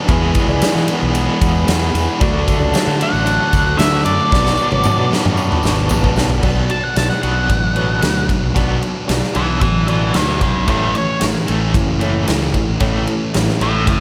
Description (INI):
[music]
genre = classic rock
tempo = 113 BPM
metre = 4/4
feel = straight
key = B dorian, B minor from 6.4 s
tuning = A4 = 440 Hz
[part]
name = overdriven electric guitar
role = riff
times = 0.0-14.0 s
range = E2 to G#4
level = -24 LUFS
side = equal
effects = tremolo, slapback echo
[part]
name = sludgy distorted guitar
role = riff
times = 0.0-14.0 s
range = A2 to F#4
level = -24 LUFS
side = equal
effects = overdrive
[part]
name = dark upright piano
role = accompaniment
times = 0.1-14.0 s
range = E4 to D5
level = -29 LUFS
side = equal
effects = none
[part]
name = fuzz fingered electric bass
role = bass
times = 0.1-14.0 s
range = F#1 to E3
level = -22 LUFS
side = equal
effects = overdrive
[part]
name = huge arena drum kit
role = drums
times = 0.1-14.0 s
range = crash cymbal, kick drum, ride cymbal, snare drum, toms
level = -21 LUFS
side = equal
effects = none
[part]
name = tambourine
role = percussion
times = 0.1-6.4 s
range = none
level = -39 LUFS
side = equal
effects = none
[part]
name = octave-fuzz lead guitar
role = melody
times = 3.0-14.0 s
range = B4 to A5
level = -22 LUFS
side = equal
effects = distortion, slapback echo, tape echo
[sound]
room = moderate concert hall reverb, RT60 2.3 s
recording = big arena sound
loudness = -16 LUFS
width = mono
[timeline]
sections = 0.0-6.4 A section; 6.4-14.0 B section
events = drum fill 4.3-6.4; lead electric guitar solo 6.4-14.0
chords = 0.1 E; 2.2 D; 4.3 Bm; 10.7 A